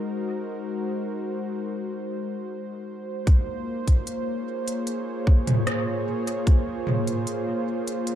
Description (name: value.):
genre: ambient dub.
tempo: 75 BPM.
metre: 4/4.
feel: straight.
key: Bb minor.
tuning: A4 = 440 Hz.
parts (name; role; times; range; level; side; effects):
warm analog pad; sustained chords; 0.0-8.2 s; Ab3 to Db5; -28 LUFS; equal; chorus, vintage 12-bit sampler grit.
electronic kick drum; drums; 3.3-6.6 s; none; -17 LUFS; equal; none.
organic electronic drum kit; drums; 3.3-8.2 s; hi-hat, rim click, toms; -27 LUFS; equal; dub echo.
room: light reverb, digital ambience.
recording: none.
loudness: -24 LUFS.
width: side -11 dB against mid.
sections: 0.0-3.3 A section; 3.3-8.2 B section.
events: break 1.7-3.3.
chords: 0.0 Ab7; 3.3 Bbm7.